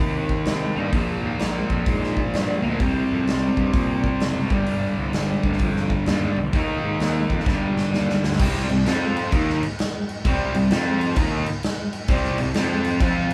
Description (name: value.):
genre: blues rock power trio and southern rock.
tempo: 129 BPM.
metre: 4/4.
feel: swing 65% on 8ths.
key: C minor.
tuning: A4 = 440 Hz.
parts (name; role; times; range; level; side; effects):
fuzz guitar; riff; 0.0-13.3 s; G2 to F4; -25 LUFS; equal; distortion.
fuzz picked electric bass; bass; 0.0-13.3 s; F#1 to C3; -29 LUFS; equal; overdrive.
big rock drum kit; drums; 0.3-13.3 s; crash cymbal, hi-hat, kick drum, snare drum; -27 LUFS; equal; none.
room: moderate large studio reverb, RT60 0.9 s.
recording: band playing live in one room, vinyl crackle.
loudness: -22 LUFS.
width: mono.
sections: 0.0-8.4 A section; 8.4-13.3 B section.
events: drum fill 7.5-8.4.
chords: 0.0 Eb; 0.9 Bb5; 2.8 C5; 4.4 G5; 6.5 Eb5; 7.5 G5; 8.4 C5; 8.9 F5; 9.3 Cm; 10.7 F5; 11.2 Cm; 12.5 F5.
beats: 0.46 | 0.93 1.40 1.87 2.34 | 2.81 3.27 3.74 4.21 | 4.68 5.14 5.61 6.08 | 6.54 7.01 7.47 7.93 | 8.40 8.86 9.32 9.79 | 10.25 10.71 11.17 11.63 | 12.09 12.55 13.01.